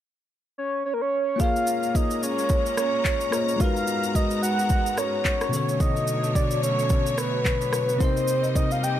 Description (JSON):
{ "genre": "amapiano", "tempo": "109 BPM", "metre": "4/4", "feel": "swing 58% on 16ths", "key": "unclear", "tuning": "A4 = 440 Hz", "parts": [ { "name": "soft octave-layered synth lead", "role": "melody", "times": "0.6-9.0 s", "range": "Bb4 to G5", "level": "-25 LUFS", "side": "equal", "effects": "chorus, ping-pong delay" }, { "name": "bell-like tine electric piano", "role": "accompaniment", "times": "1.4-9.0 s", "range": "B2 to Eb5", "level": "-28 LUFS", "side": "left 3 dB", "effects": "none" }, { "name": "rich symphonic string section", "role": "sustained chords", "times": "1.4-9.0 s", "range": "Ab2 to Bb5", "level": "-31 LUFS", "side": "equal", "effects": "sidechain pumping" }, { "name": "afro-pop drum kit", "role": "drums", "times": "1.4-9.0 s", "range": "handclaps, kick drum, rim click, shaker", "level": "-26 LUFS", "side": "right 1 dB", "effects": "none" } ], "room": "light reverb, digital ambience", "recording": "none", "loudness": "-21 LUFS", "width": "side -11 dB against mid", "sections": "0.0-1.4 A section; 1.4-9.0 B section", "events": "none", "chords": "0.0 N.C.; 1.4 Bbm7; 3.6 Abm9; 5.5 Bm9; 8.0 Cm7" }